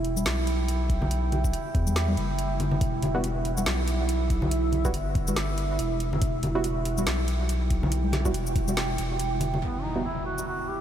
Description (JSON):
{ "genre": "deep dubstep", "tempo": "141 BPM", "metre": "4/4", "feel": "swing 57% on 16ths, half-time", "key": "E minor", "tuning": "A4 = 440 Hz", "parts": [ { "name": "deep dark ambient pad", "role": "sustained chords", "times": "0.0-10.8 s", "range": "E4 to G5", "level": "-31 LUFS", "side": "right 4 dB", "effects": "chorus, built-in reverb" }, { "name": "saturated sub bass", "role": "bass", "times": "0.0-9.6 s", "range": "E1 to E2", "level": "-28 LUFS", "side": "equal", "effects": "none" }, { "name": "garage drum kit", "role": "drums", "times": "0.0-10.5 s", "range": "hi-hat, shaker, snare drum", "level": "-34 LUFS", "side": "equal", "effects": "none" }, { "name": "congas", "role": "percussion", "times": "0.2-9.6 s", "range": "none", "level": "-33 LUFS", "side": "left 2 dB", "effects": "dub echo" }, { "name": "electronic kick drum", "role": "drums", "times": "0.9-8.7 s", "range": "none", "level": "-27 LUFS", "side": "equal", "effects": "none" }, { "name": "filtered dub chord stab", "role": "stabs", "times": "3.1-10.1 s", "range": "G3 to F#4", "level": "-34 LUFS", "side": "right 2 dB", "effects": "chorus, cassette tape, dub echo" }, { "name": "warm duduk", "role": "melody", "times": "9.6-10.8 s", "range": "B3 to G4", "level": "-32 LUFS", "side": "equal", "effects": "dub echo" }, { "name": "impact", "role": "sound effects", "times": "9.6-10.8 s", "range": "none", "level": "-33 LUFS", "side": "equal", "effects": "none" } ], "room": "moderate huge ambient reverb, RT60 4.6 s", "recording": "dreamy mix soaked in reverb", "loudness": "-24 LUFS", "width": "side -10 dB against mid", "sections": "0.0-9.6 A section; 9.6-10.8 B section", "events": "impact 9.6-10.8", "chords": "0.0 Emadd9", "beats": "0.26 0.68 | 1.11 1.53 1.96 2.39 | 2.81 3.24 3.66 4.09 | 4.51 4.94 5.37 5.79 | 6.22 6.64 7.07 7.49 | 7.92 8.34 8.77 9.20 | 9.62 10.05 10.47" }